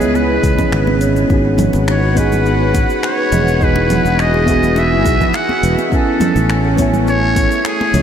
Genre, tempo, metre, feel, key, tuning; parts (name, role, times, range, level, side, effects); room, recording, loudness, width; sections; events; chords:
sunset chillout; 104 BPM; 4/4; straight; E major; A4 = 440 Hz
trumpet with metal mute; melody; 0.0-8.0 s; G#4 to F#5; -19 LUFS; equal; analog delay
mellow FM electric piano; accompaniment; 0.0-8.0 s; B3 to G#5; -20 LUFS; equal; chorus, auto-pan, cassette tape, analog delay
lush unison pad; sustained chords; 0.0-8.0 s; C#3 to F#5; -22 LUFS; equal; chorus
sustaining fretless electric bass; bass; 0.0-8.0 s; E1 to C#2; -16 LUFS; equal
deep house drum kit; drums; 0.0-8.0 s; cabasa, congas, finger snaps, hi-hat; -25 LUFS; right 4 dB
congas; percussion; 0.0-7.9 s; -25 LUFS; left 2 dB
kalimba; arpeggios; 0.1-8.0 s; C#4 to D#5; -21 LUFS; right 2 dB; analog delay
electronic kick drum; drums; 0.4-7.5 s; -18 LUFS; equal
wet huge ambient reverb, RT60 7.7 s; dreamy mix soaked in reverb; -12 LUFS; side -8 dB against mid
0.0-8.0 A section
0.0 C#m7; 1.3 Emaj9; 5.9 Amaj7